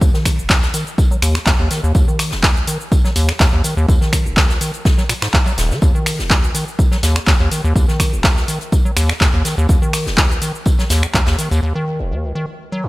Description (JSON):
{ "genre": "acid house", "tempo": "124 BPM", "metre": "4/4", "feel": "straight", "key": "Eb minor", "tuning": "A4 = 445 Hz", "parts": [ { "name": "acid bass, square", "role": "riff", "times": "0.0-12.9 s", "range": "Eb1 to Gb3", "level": "-19 LUFS", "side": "equal", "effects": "tube saturation, sidechain pumping" }, { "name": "electronic kick drum", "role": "drums", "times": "0.0-11.2 s", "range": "none", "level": "-15 LUFS", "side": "equal", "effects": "none" }, { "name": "punchy analog drum machine", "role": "drums", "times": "0.0-11.6 s", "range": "cabasa, finger snaps, handclaps, hi-hat", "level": "-20 LUFS", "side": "equal", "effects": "none" }, { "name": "swinging big-band drum kit", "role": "drums", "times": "0.0-11.6 s", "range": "hi-hat, snare drum, tambourine", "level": "-28 LUFS", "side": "left 1 dB", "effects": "high-pass filter on hats, high-pass filter on snare, high-pass filter on perc, high-pass filter on room" } ], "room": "light reverb", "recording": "bright 1980s-style digital production", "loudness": "-13 LUFS", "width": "side -19 dB against mid", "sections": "0.0-12.9 A section", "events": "filter sweep on acid bass 0.0-12.9; break 11.6-12.9", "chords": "none", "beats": "| 0.01 0.50 0.98 1.47 | 1.95 2.43 2.92 3.40 | 3.88 4.37 4.85 5.34 | 5.82 6.30 6.79 7.27 | 7.76 8.24 8.72 9.21 | 9.69 10.18 10.66 11.14 | 11.63 12.11 12.60" }